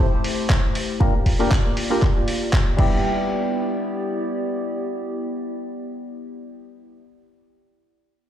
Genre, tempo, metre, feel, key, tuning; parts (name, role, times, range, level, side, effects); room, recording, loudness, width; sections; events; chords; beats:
deep house; 118 BPM; 4/4; swing 55% on 16ths; E phrygian; A4 = 440 Hz
warbly tape-like pad; sustained chords; 0.0-7.0 s; A3 to D5; -28 LUFS; left 1 dB; chorus, built-in reverb, sidechain pumping
percussive organ stab; stabs; 0.0-7.1 s; G3 to Bb4; -26 LUFS; equal; chorus, phaser, sidechain pumping, dub echo
dusty soul sampler-style drum kit; drums; 0.2-2.9 s; crash cymbal, handclaps, hi-hat; -28 LUFS; equal
electronic kick drum; drums; 0.5-2.9 s; -19 LUFS; equal
light reverb; played on a big sound system in a bare room, large studio reverb; -19 LUFS; side -10 dB against mid
0.0-3.0 A section; 3.0-7.1 B section
filter sweep on synth stab 0.0-3.0
0.0 Am7; 1.0 Gm7; 2.8 Em7
0.50 | 1.01 1.51 2.02 2.53 | 3.04 3.55 4.06 4.57 | 5.07 5.58 6.09 6.60